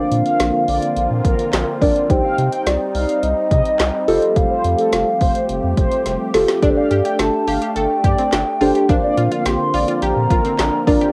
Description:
synth-pop; 106 BPM; 4/4; straight; Bb major; A4 = 440 Hz
hollow clarinet-like synth lead; melody; 0.0-11.1 s; C5 to C6; -23 LUFS; equal; chorus, plate reverb
mellow synth brass; second line; 0.0-10.7 s; A4 to G5; -28 LUFS; equal; chorus, tape echo, plate reverb
muted felt-like synth keys; accompaniment; 0.0-11.1 s; D4 to D5; -21 LUFS; equal; chorus, plate reverb
sweeping resonant pad; sustained chords; 0.0-11.1 s; D3 to G4; -26 LUFS; equal; subtle chorus, plate reverb
round analog bass; bass; 0.1-11.0 s; F1 to C3; -25 LUFS; equal
deep house drum kit; drums; 0.1-11.1 s; handclaps, hi-hat, kick drum, snare drum; -23 LUFS; equal; cassette tape
analog pluck; arpeggios; 6.6-11.1 s; C4 to A4; -26 LUFS; equal; chorus, tape echo, plate reverb
moderate studio reverb, RT60 0.6 s; home recording on cassette; -17 LUFS; mono
0.0-11.1 A section
drum fill 6.1-6.6
0.0 Bbadd9; 2.1 Cm; 4.1 Fadd9; 6.6 Gsus2; 8.9 Bbadd9

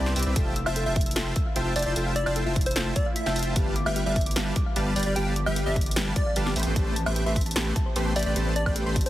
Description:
future bass; 150 BPM; 4/4; half-time; A4 = 440 Hz
plucky unison lead; melody; 0.0-9.1 s; C5 to G5; -32 LUFS; equal; sidechain pumping, tape echo
shimmering ambient pad; sustained chords; 0.0-9.1 s; C3 to G4; -38 LUFS; equal
dense compressed supersaw; riff; 0.0-9.0 s; G3 to C6; -30 LUFS; equal; sidechain pumping
saturated sub bass; bass; 0.0-9.1 s; F1 to C2; -28 LUFS; equal; sidechain pumping
thumb-piano-like synth pluck; arpeggios; 0.1-9.1 s; G4 to E6; -37 LUFS; left 2 dB; chorus, cassette tape, sidechain pumping, tape echo
big-room dance drum kit; drums; 0.1-9.1 s; hi-hat, snare drum, woodblock; -31 LUFS; equal; studio ambience
electronic kick drum; drums; 0.4-9.0 s; -26 LUFS; equal; studio ambience
little or no reverb; heavily compressed radio sound; -23 LUFS; side -14 dB against mid
0.0-9.1 A section
0.4 Fmaj7; 3.6 G7; 6.6 Am9

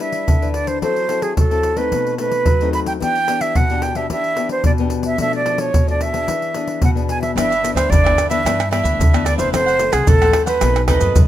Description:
samba and choro; 110 BPM; 4/4; straight; G major; A4 = 440 Hz
breathy concert flute; melody; 0.0-11.2 s; Ab4 to B5; -19 LUFS; right 2 dB
nylon-string guitar; accompaniment; 0.0-11.3 s; F#2 to B4; -23 LUFS; left 6 dB
pandeiro, surdo, maracas and tamborim; percussion; 0.1-11.3 s; -18 LUFS; equal
cavaquinho; accompaniment; 7.4-11.3 s; D4 to F#5; -28 LUFS; right 4 dB
upright bass; bass; 7.4-11.3 s; F1 to G2; -21 LUFS; equal
light reverb; close, detailed microphones; -15 LUFS; side -12 dB against mid
0.0-7.4 A section; 7.4-11.3 B section
0.0 G6; 0.8 F#m7b5; 1.9 B7b9; 3.0 Em7; 5.2 Bm7b5; 6.3 E7; 7.4 G6; 9.5 F#m7b5; 10.6 B7b9

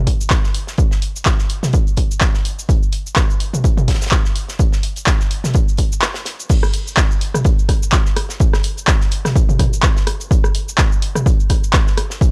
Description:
house; 126 BPM; 4/4; swing 55% on 16ths
electronic kick drum; drums; 0.1-12.3 s; -17 LUFS; equal
modern studio drum kit; drums; 0.1-12.3 s; hi-hat, snare drum; -34 LUFS; equal; sidechain pumping on hats, high-pass filter on hats, high-pass filter on snare, high-pass filter on room
punchy analog drum machine; drums; 0.1-12.3 s; crash cymbal, handclaps, hi-hat, rim click, shaker, toms; -23 LUFS; equal
little or no reverb; dry, gritty hardware recording, cassette tape; -16 LUFS; mono
0.0-6.5 A section; 6.5-12.3 B section
break 6.0-6.5; drop 6.5-12.3

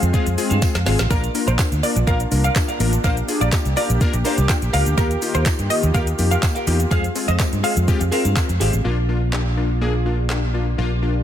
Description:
dance-pop; 124 BPM; 4/4; straight; A4 = 445 Hz
warm analog keys; accompaniment; 0.0-11.2 s; Ab3 to C5; -26 LUFS; left 5 dB; chorus, sidechain pumping
warm analog pad; sustained chords; 0.0-11.2 s; Eb3 to G4; -28 LUFS; equal; chorus, sidechain pumping
twelve-string electric guitar; riff; 0.0-8.8 s; G4 to F5; -28 LUFS; right 2 dB; lush chorus
fingered electric bass; bass; 0.0-11.2 s; Ab1 to G2; -20 LUFS; equal; sidechain pumping
smooth R&B drum kit; drums; 0.0-10.4 s; handclaps, hi-hat, kick drum, shaker, snare drum; -22 LUFS; equal
tambourine; percussion; 0.4-8.7 s; -37 LUFS; right 8 dB
wide unison pluck; melody; 1.1-7.7 s; Bb4 to G5; -26 LUFS; right 1 dB; sidechain pumping, digital delay
light reverb; dense, heavily limited modern master; -17 LUFS; side -10 dB against mid
0.0-8.8 A section; 8.8-11.2 B section
drop 0.0-8.8; drum fill 0.6-1.1
0.0 Fm; 1.1 Bb; 5.0 Ebadd9; 6.9 Fm; 8.8 Bb

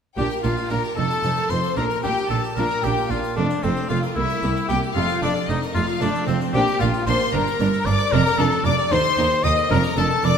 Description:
classical, baroque-style concerto movement with solo episodes; 76 BPM (dotted quarters); 6/8; straight; Bb major; A4 = 439 Hz
rich chamber violin section; melody; 0.2-10.4 s; C5 to Eb6; -28 LUFS; left 6 dB
warm oboe; melody; 0.2-10.4 s; C4 to Eb5; -25 LUFS; left 2 dB
rich chamber violin section; second line; 0.2-10.4 s; C4 to Eb5; -26 LUFS; left 3 dB
harpsichord; accompaniment; 0.2-10.4 s; C2 to Eb5; -30 LUFS; right 2 dB
warm studio viola section; accompaniment; 0.2-10.3 s; A3 to Eb4; -29 LUFS; right 2 dB
rich chamber double bass section; bass; 0.2-10.3 s; F1 to Eb2; -26 LUFS; right 4 dB
rich studio cello section; bass; 0.2-10.3 s; C2 to Bb2; -26 LUFS; right 3 dB
moderate concert hall reverb, RT60 2.3 s; -18 LUFS; side -7 dB against mid
0.2-10.4 A section
0.2 Bb; 1.0 F7; 1.8 Bb; 3.4 F; 4.2 C7; 5.0 F; 6.5 Bb; 7.3 Gm; 8.1 Dm/F; 8.9 Cm/Eb; 9.7 Bb/F

